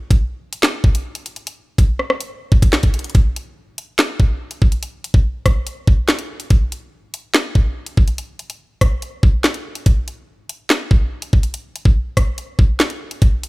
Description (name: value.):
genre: hip hop.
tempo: 143 BPM.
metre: 4/4.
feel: half-time.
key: none.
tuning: none.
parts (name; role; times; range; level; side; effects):
drill drum kit; drums; 0.1-13.5 s; handclaps, hi-hat, kick drum, rim click, snare drum; -14 LUFS; equal; overdrive.
room: little or no reverb.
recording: none.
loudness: -15 LUFS.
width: side -22 dB against mid.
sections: 0.0-3.1 A section; 3.1-13.5 B section.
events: none.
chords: none.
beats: 0.21 0.63 1.05 | 1.47 1.89 2.31 2.73 | 3.15 3.57 3.99 4.41 | 4.83 5.25 5.67 6.08 | 6.50 6.92 7.34 7.76 | 8.18 8.60 9.02 9.44 | 9.86 10.28 10.70 11.12 | 11.54 11.96 12.38 12.80 | 13.22.